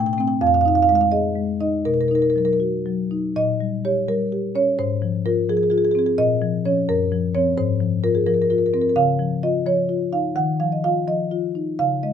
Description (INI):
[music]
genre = classical, contemporary piece for solo marimba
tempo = 85 BPM (dotted quarters)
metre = 6/8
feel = rubato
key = unclear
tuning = A4 = 441 Hz
[part]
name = marimba with soft mallets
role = solo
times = 0.0-12.1 s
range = F2 to G5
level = -18 LUFS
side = left 1 dB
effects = none
[sound]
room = light reverb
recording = close, detailed microphones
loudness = -18 LUFS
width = side -8 dB against mid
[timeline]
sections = 0.0-3.4 A section; 3.4-12.1 B section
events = none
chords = 0.4 Fm7; 1.9 Bmaj7; 3.4 Bbm6; 4.8 Ab6; 6.2 Bbm; 6.9 Gbmaj7#11; 7.6 Ab69; 9.0 Dbadd9; 10.4 Ebsus2